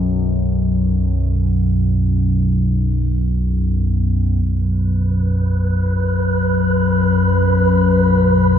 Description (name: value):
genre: dark ambient drone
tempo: free time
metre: none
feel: none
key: unclear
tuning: A4 = 438 Hz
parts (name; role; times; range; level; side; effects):
- analog drone; drone; 0.0-8.6 s; B1 to F#2; -15 LUFS; left 1 dB; chorus
- wind-like tuned noise texture; texture; 5.3-8.6 s; B4; -20 LUFS; right 3 dB; built-in reverb, shimmer reverb
room: moderate huge ambient reverb, RT60 8.6 s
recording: none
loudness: -14 LUFS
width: side -9 dB against mid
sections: 0.0-4.4 A section; 4.4-8.6 B section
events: none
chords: 0.0 B5